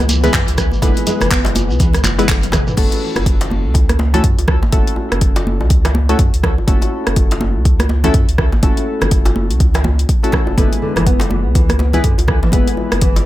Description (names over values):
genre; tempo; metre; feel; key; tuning
afro house; 123 BPM; 4/4; swing 60% on 16ths; F# minor; A4 = 440 Hz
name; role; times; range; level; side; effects
ethereal airy pad; sustained chords; 0.0-2.7 s; B2 to E4; -31 LUFS; equal; none
warm analog keys; stabs; 0.0-13.3 s; G#3 to B4; -21 LUFS; left 2 dB; chorus, sidechain pumping, tape echo
warm sub bass; bass; 0.0-13.3 s; F#1 to F#2; -17 LUFS; equal; sidechain pumping
djembe; percussion; 0.0-13.2 s; none; -25 LUFS; left 1 dB; none
deep house drum kit; drums; 0.1-13.2 s; crash cymbal, handclaps, hi-hat, rim click, toms; -22 LUFS; equal; overdrive
congas; percussion; 0.1-13.0 s; none; -24 LUFS; right 2 dB; none
shekere; percussion; 0.1-2.8 s; none; -28 LUFS; right 2 dB; tape echo
nylon-string guitar; arpeggios; 0.3-2.7, 10.6-13.2 s; D3 to B3; -22 LUFS; equal; sidechain pumping, tape echo
electronic kick drum; drums; 0.3-13.1 s; none; -15 LUFS; equal; overdrive
room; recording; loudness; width
little or no reverb; echo-heavy mix; -12 LUFS; side -15 dB against mid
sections
0.0-2.8 A section; 2.8-13.3 B section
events
drop 0.0-2.8; drum fill 2.3-2.8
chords
0.0 E/F#; 2.8 F#m7; 10.6 E/F#